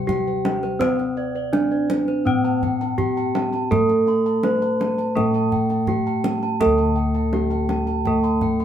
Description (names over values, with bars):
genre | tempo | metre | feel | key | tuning
Javanese gamelan | 83 BPM | 4/4 | straight | unclear | A4 = 440 Hz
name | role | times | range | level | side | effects
gamelan-type bronze metallophone | melody | 0.0-8.6 s | C4-45c to C5-45c | -24 LUFS | right 1 dB | none
gamelan-type bronze metallophone | accompaniment | 0.0-8.6 s | G3-35c to C4-45c | -23 LUFS | left 2 dB | none
gamelan-type bossed gongs | arpeggios | 0.0-8.6 s | C5-45c to C6-45c | -31 LUFS | left 1 dB | none
gamelan-type bronze metallophone | arpeggios | 0.0-8.6 s | C5-45c to C6-45c | -30 LUFS | right 8 dB | none
gamelan-type bossed gongs | bass | 0.0-8.6 s | D2 to C5-45c | -25 LUFS | right 1 dB | none
kendang | percussion | 0.1-8.6 s | none | -27 LUFS | right 1 dB | none
room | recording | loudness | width
moderate studio reverb, RT60 0.6 s | band playing live in one room | -18 LUFS | side -9 dB against mid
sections
0.0-8.6 A section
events
none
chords
none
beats
0.08 | 0.81 1.53 2.26 2.98 | 3.71 4.44 5.16 5.89 | 6.62 7.34 8.07